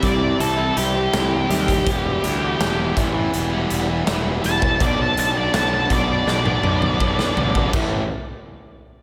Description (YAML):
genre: quiet-loud alternative rock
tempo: 82 BPM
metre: 4/4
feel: straight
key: A dorian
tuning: A4 = 437 Hz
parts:
  - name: octave-fuzz lead guitar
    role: melody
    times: 0.0-7.7 s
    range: G4 to A5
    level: -26 LUFS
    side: equal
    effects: distortion, slapback echo
  - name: fingerpicked steel-string acoustic guitar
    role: arpeggios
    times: 0.0-1.9 s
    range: C3 to E4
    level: -29 LUFS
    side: equal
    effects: slapback echo
  - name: fuzz guitar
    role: riff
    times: 0.0-8.0 s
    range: A2 to E4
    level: -30 LUFS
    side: equal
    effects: distortion, slapback echo
  - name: fuzz guitar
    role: riff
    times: 0.0-8.0 s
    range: A2 to E4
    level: -28 LUFS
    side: equal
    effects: distortion, slapback echo
  - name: fuzz picked electric bass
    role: bass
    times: 0.0-8.1 s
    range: E1 to D#2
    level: -26 LUFS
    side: equal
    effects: overdrive
  - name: big rock drum kit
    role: drums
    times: 0.0-7.9 s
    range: crash cymbal, hi-hat, kick drum, snare drum, toms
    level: -26 LUFS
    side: equal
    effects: none
room: moderate concert hall reverb, RT60 2.0 s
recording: big arena sound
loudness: -20 LUFS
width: mono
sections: 0.0-7.7 A section; 7.7-9.0 B section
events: lead electric guitar solo 0.0-7.7; drum fill 6.3-7.7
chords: 0.0 C; 1.9 Em; 4.8 Bm; 7.7 A5